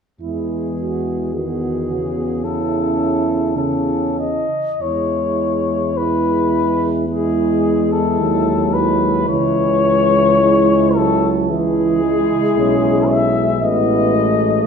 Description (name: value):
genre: classical, hymn-like piece for brass band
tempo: 46-59 BPM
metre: 4/4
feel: rubato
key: E major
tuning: A4 = 440 Hz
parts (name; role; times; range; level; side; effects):
- dark cornet; melody; 0.2-14.7 s; G#4 to E5; -19 LUFS; left 5 dB; none
- mellow French horn section; second line; 0.2-14.6 s; C#4 to F#4; -20 LUFS; right 5 dB; none
- mellow trombone; accompaniment; 0.2-14.7 s; C#3 to C#4; -23 LUFS; right 2 dB; none
- warm euphonium; accompaniment; 0.2-14.6 s; G#3 to E4; -24 LUFS; left 4 dB; none
- mellow tuba; bass; 0.2-14.7 s; A1 to E2; -22 LUFS; equal; none
room: moderate concert hall reverb, RT60 1.8 s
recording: minimal, uncompressed stereo recording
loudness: -14 LUFS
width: side -6 dB against mid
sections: 0.2-4.8 A section; 4.8-14.7 B section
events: none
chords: 0.2 E; 2.4 A/E; 4.8 E; 9.3 C#m; 13.6 Amaj7(no3)